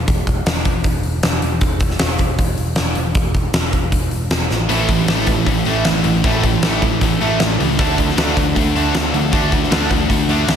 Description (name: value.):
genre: hard rock.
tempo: 156 BPM.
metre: 4/4.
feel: straight.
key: unclear.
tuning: A4 = 440 Hz.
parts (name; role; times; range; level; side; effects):
picked electric bass; bass; 0.0-10.6 s; E1 to D2; -21 LUFS; equal; none.
huge arena drum kit; drums; 0.1-10.6 s; hi-hat, kick drum, snare drum; -18 LUFS; equal; none.
cranked stack guitar; riff; 4.7-10.6 s; A2 to D4; -21 LUFS; right 9 dB; overdrive, spring reverb.
crunchy overdriven guitar; riff; 4.7-10.6 s; A2 to F#4; -22 LUFS; equal; slapback echo.
heavy high-gain guitar; riff; 4.7-10.6 s; A2 to D4; -21 LUFS; left 10 dB; distortion.
room: light reverb, small room reverb.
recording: none.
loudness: -14 LUFS.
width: side -8 dB against mid.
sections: 0.0-10.6 A section.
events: drum fill 4.5.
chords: 0.0 N.C.; 4.5 A; 7.8 D.